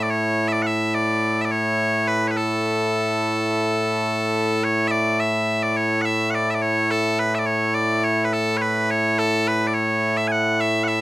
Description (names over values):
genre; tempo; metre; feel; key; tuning
scottish traditional, Scottish pipe music; 106 BPM; 4/4; straight; A major; A4 = 440 Hz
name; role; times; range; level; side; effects
loud bright bagpipes; solo; 0.0-11.0 s; A2 to G#5; -19 LUFS; equal; none
room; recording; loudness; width
light reverb; rough home demo mix; -19 LUFS; side -17 dB against mid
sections
0.0-4.6 A section; 4.6-11.0 B section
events
none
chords
none